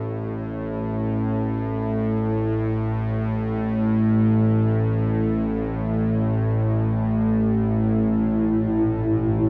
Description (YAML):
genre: dark ambient drone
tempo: free time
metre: none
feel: none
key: unclear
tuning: A4 = 440 Hz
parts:
  - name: bowed-like drone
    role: drone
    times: 0.0-9.5 s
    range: A1 to A2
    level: -23 LUFS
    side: equal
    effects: built-in reverb
  - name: granular cloud pad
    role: sustained chords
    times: 8.3-9.5 s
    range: A2 to G3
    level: -26 LUFS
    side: equal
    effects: built-in reverb
room: wet huge ambient reverb, RT60 7.5 s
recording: in a vast, echoing space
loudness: -22 LUFS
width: mono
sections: 0.0-9.5 A section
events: none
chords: 0.0 N.C.; 7.5 Gsus2/A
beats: free time